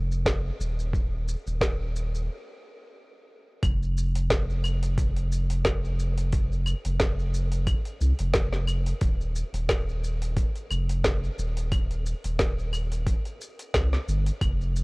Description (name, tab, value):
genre	organic downtempo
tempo	89 BPM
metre	4/4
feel	swing 56% on 16ths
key	unclear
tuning	A4 = 444 Hz
part	warm sub bass	bass	0.0-14.8 s	Eb1 to C2	-26 LUFS	equal	sidechain pumping
part	afro-pop drum kit	drums	0.1-14.8 s	claves, hi-hat, shaker, snare drum	-31 LUFS	equal	overdrive
part	electronic kick drum	drums	0.3-14.6 s	none	-26 LUFS	equal	none
room	little or no reverb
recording	worn, warbling old tape, cassette tape, warbly pitch drift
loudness	-24 LUFS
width	side -29 dB against mid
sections	0.0-3.6 A section; 3.6-14.8 B section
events	stop 2.3-3.6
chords	none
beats	0.26 | 0.93 1.61 2.28 2.96 | 3.63 4.30 4.98 5.65 | 6.33 7.00 7.67 8.35 | 9.02 9.70 10.37 11.05 | 11.72 12.39 13.07 13.74 | 14.42